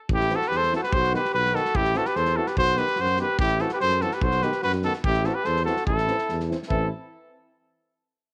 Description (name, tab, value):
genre	balkan folk, Balkan brass band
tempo	145 BPM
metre	2/4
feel	straight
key	A dorian sharp4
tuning	A4 = 440 Hz
part	warm trumpet	melody	0.1-6.9 s	G4 to C5	-26 LUFS	equal	none
part	mellow flugelhorn	second line	0.1-6.9 s	E4 to A4	-34 LUFS	equal	none
part	warm tuba	bass	0.1-6.9 s	A1 to F#2	-31 LUFS	equal	none
part	loose indie drum kit	percussion	0.1-6.9 s	kick drum, snare drum	-34 LUFS	equal	none
part	mellow trombone	accompaniment	0.3-6.9 s	B3 to C4	-39 LUFS	equal	none
part	warm euphonium	accompaniment	0.3-6.9 s	D#3 to E3	-37 LUFS	equal	none
room	light reverb, small room ambience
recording	none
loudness	-24 LUFS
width	mono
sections	0.1-6.7 A section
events	none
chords	0.1 Am; 0.9 B; 1.7 Am; 2.6 B; 3.4 Am; 4.2 B; 5.0 Am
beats	| 0.09 0.51 | 0.92 1.33 | 1.75 2.16 | 2.57 2.98 | 3.40 3.81 | 4.22 4.64 | 5.05 5.46 | 5.88 6.29 | 6.70